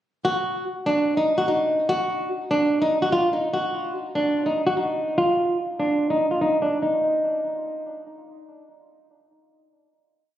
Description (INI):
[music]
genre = hip hop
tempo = 146 BPM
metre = 4/4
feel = half-time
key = Eb harmonic minor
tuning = A4 = 440 Hz
[part]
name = flamenco guitar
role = solo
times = 0.2-8.0 s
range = D4 to Gb4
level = -21 LUFS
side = equal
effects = low-pass filter, ping-pong delay
[sound]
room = moderate recital hall reverb, RT60 1.4 s, small room ambience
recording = recorded on a phone in the room, studio reverb, low-pass filter, nothing above 10.9 kHz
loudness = -20 LUFS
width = side -12 dB against mid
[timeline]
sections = 0.2-6.8 breakdown; 6.8-10.1 final note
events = filter sweep 0.2-6.8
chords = none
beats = | 0.25 0.66 1.07 1.48 | 1.89 2.30 2.71 3.12 | 3.54 3.95 4.36 4.77 | 5.18 5.59 6.00 6.41 | 6.82 7.23 7.64